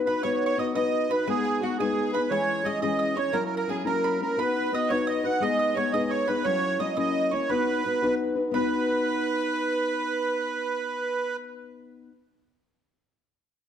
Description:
celtic folk, Celtic jig; 116 BPM (dotted quarters); 6/8; straight; B major; A4 = 440 Hz
accordion; melody; 0.0-11.4 s; F#4 to F#5; -27 LUFS; right 4 dB; light tremolo tuning
fingerpicked steel-string acoustic guitar; accompaniment; 0.0-12.1 s; E3 to B4; -27 LUFS; left 4 dB
bright fiddle; second line; 0.1-11.4 s; F#4 to F#5; -37 LUFS; left 6 dB
mandolin; second line; 0.1-12.1 s; F#5 to D#6; -36 LUFS; right 5 dB
moderate recital hall reverb, RT60 1.4 s; dark, warm production; -24 LUFS; side -8 dB against mid
0.2-8.5 A section; 8.5-10.6 B section
0.2 B; 1.3 G#m; 2.3 C#m/E; 3.4 F#7; 4.4 B; 5.4 G#m; 6.5 F#7; 7.5 B
| 0.24 0.76 | 1.28 1.79 | 2.31 2.83 | 3.35 3.87 | 4.39 4.90 | 5.42 5.94 | 6.46 6.98 | 7.49 8.01 | 8.53 9.05 | 9.56 10.08

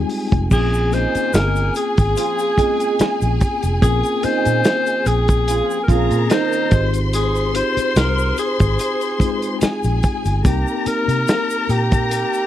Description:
lush 1970s-style soul; 72 BPM; 4/4; swing 54% on 16ths; Bb dorian; A4 = 438 Hz
warm studio string section; second line; 0.0-12.5 s; Ab4 to C6; -25 LUFS; left 2 dB
mellow tine electric piano; accompaniment; 0.0-12.5 s; G3 to Bb4; -25 LUFS; left 4 dB; medium stereo tremolo
vintage muted fingered electric bass; bass; 0.0-12.2 s; F1 to C3; -19 LUFS; equal
vintage drum kit; drums; 0.1-12.5 s; crash cymbal, hi-hat, kick drum, snare drum; -19 LUFS; equal
warm alto saxophone; melody; 0.5-12.5 s; G4 to C5; -21 LUFS; equal
egg shaker; percussion; 0.5-12.5 s; -37 LUFS; left 19 dB
mellow horn section; stabs; 0.9-6.9 s; Eb3 to Ab4; -24 LUFS; right 14 dB
small room reverb; dry, close 1970s-style studio recording; -15 LUFS; side -12 dB against mid
0.5-12.5 A section
0.0 Fm9; 0.5 Bbm9; 6.7 Fm9/Ab; 10.4 Cm7
| 0.51 1.34 2.17 2.99 | 3.82 4.65 5.48 6.30 | 7.13 7.96 8.79 9.62 | 10.45 11.28 12.10

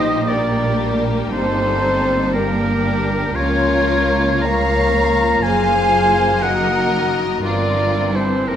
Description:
classical, slow romantic movement for symphony orchestra; 59 BPM (dotted quarters); 6/8; uneven beats, rubato; G minor, Bb minor from 3.3 s; A4 = 440 Hz
warm symphonic violin section; melody; 0.0-8.6 s; D4 to Db5; -25 LUFS; left 4 dB
hollow concert flute; second line; 0.0-8.6 s; Bb4 to Bb5; -24 LUFS; equal
rich symphonic violin section; second line; 0.0-8.6 s; G4 to F5; -26 LUFS; left 2 dB
warm oboe; second line; 0.0-8.6 s; Bb4 to Bb5; -21 LUFS; right 1 dB
warm symphonic viola section; accompaniment; 0.0-8.6 s; Eb3 to C4; -26 LUFS; equal
mellow French horn section; sustained chords; 0.0-8.6 s; Bb3 to Bb4; -22 LUFS; left 4 dB
rich studio double bass section; bass; 0.0-8.6 s; Gb1 to Db2; -25 LUFS; right 3 dB
warm studio cello section; bass; 0.0-8.6 s; Db2 to Bb2; -24 LUFS; right 2 dB
wet scoring stage reverb, RT60 1.6 s; -15 LUFS; side -9 dB against mid
0.0-8.6 A section
0.0 Gm/Bb; 1.3 Gm; 3.3 Bbm/Db; 5.4 Ebm/Gb; 7.4 C7/G
0.28 | 1.32 2.34 | 3.35 4.43 | 5.42 6.42 | 7.44 8.49

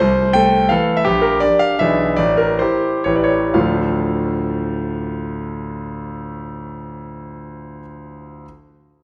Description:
classical, romantic triple-time dance for piano with dotted rhythms; 111-186 BPM; 3/4; rubato; D minor; A4 = 440 Hz
clear concert grand piano; solo; 0.0-8.5 s; A1 to G5; -19 LUFS; equal
wet recital hall reverb, RT60 1.7 s; -17 LUFS; mono
0.0-3.5 A section; 3.5-6.3 B section
slowing down 0.5-3.5
0.0 Am/C; 1.0 Gm/Bb; 1.8 E7/B; 2.2 A5; 3.5 Dm
| 0.00 0.35 0.70 | 1.05 1.41 1.80 | 2.17 2.59 3.04 | 3.54 4.01 4.51 | 4.96 5.42 5.89

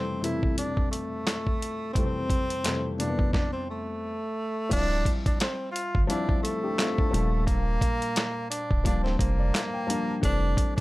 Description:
hip hop, boom-bap hip-hop; 87 BPM; 4/4; swing 58% on 16ths; D minor; A4 = 441 Hz
breathy tenor saxophone; melody; 0.0-10.8 s; A3 to F4; -30 LUFS; equal; slapback echo, plate reverb
dark grand piano; accompaniment; 0.0-10.8 s; F2 to A5; -31 LUFS; left 2 dB; cassette tape, plate reverb
dusty soul sampler-style drum kit; drums; 0.2-10.8 s; crash cymbal, handclaps, hi-hat, kick drum, snare drum; -26 LUFS; equal
warm sub bass; bass; 4.7-10.6 s; D1 to G1; -27 LUFS; equal
light reverb; -24 LUFS; side -19 dB against mid
0.0-4.7 A section; 4.7-10.8 B section
stop 3.3-4.7
0.0 Fmaj7; 4.7 Dm11; 7.1 Ebmaj7; 10.2 Fmaj7
0.57 1.26 | 1.95 2.64 3.33 4.02 | 4.71 5.40 6.09 6.78 | 7.47 8.16 8.85 9.54 | 10.23

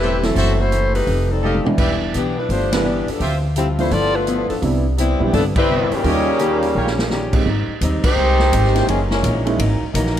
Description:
jazz, big band swing; 169 BPM; 4/4; swing 64% on 8ths; A4 = 440 Hz
mellow saxophone section; melody; 0.0-9.4 s; Eb3 to D5; -20 LUFS; left 2 dB
fingerpicked steel-string acoustic guitar; accompaniment; 0.0-10.2 s; F#2 to G4; -25 LUFS; left 2 dB
clear trumpet section; stabs; 0.0-3.4, 5.6-6.9 s; C4 to F5; -25 LUFS; right 1 dB
upright bass; bass; 0.0-10.2 s; E1 to Eb2; -20 LUFS; equal
clear baby grand piano; accompaniment; 0.2-9.6 s; E3 to G4; -24 LUFS; right 3 dB
swinging big-band drum kit; drums; 0.2-10.2 s; crash cymbal, hi-hat, kick drum, ride cymbal, snare drum, toms; -24 LUFS; equal
clear trombone section; second line; 5.9-9.4 s; Bb2 to G4; -23 LUFS; right 4 dB
moderate recital hall reverb, RT60 1.6 s; -15 LUFS; side -10 dB against mid
0.0-7.5 A section; 7.5-10.2 B section
drum fill 1.4-1.8, 6.8-7.1; band accent 2.7, 5.5, 8.0
0.4 F#m7b5; 1.1 F9; 1.8 Em7; 3.2 Dm11; 3.9 G13; 4.6 Cmaj7; 6.0 Eb7; 7.5 Abmaj7; 8.9 Gb13
0.00 | 0.36 0.72 1.07 1.43 | 1.78 2.14 2.50 2.85 | 3.21 3.56 3.92 4.27 | 4.63 4.98 5.34 5.69 | 6.05 6.40 6.76 7.11 | 7.46 7.82 8.17 8.53 | 8.88 9.23 9.59 9.94

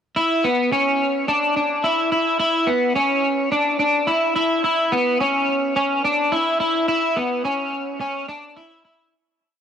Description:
dream pop; 107 BPM; 4/4; straight; A4 = 440 Hz
electric guitar at the edge of break-up; solo; 0.2-9.1 s; B3 to E4; -18 LUFS; equal; analog chorus, analog delay
light reverb, digital ambience; dry, gritty hardware recording; -18 LUFS; side -8 dB against mid
0.2-9.1 verse
fade-out 6.9-9.1
| 0.16 0.72 1.28 1.84 | 2.40 2.96 3.52 4.08 | 4.65 5.21 5.77 6.33 | 6.89 7.45 8.01 8.57

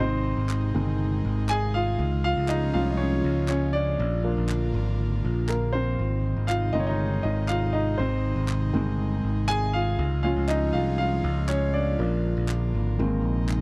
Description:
piano-driven pop; 120 BPM; 4/4; straight; Ab major; A4 = 440 Hz
warm grand piano; accompaniment; 0.0-13.6 s; Eb3 to Ab5; -30 LUFS; equal
airy breathy pad; sustained chords; 0.0-13.6 s; C3 to F4; -36 LUFS; equal; chorus
picked electric bass; bass; 0.0-13.6 s; G1 to Db2; -28 LUFS; equal
group handclap; percussion; 0.5-13.6 s; -38 LUFS; equal
little or no reverb; dry, close 1970s-style studio recording; -25 LUFS; mono
0.0-13.6 A section
grand piano solo 0.0-13.6
0.0 Ab; 2.0 Db; 4.0 Bb; 6.0 Ab; 10.0 Db; 12.0 Bb; 13.0 Abadd9
0.49 0.99 1.49 | 1.99 2.49 2.99 3.49 | 3.99 4.49 4.99 5.49 | 5.99 6.49 6.99 7.49 | 7.99 8.49 8.99 9.49 | 9.99 10.49 10.99 11.49 | 11.99 12.49 12.99 13.49

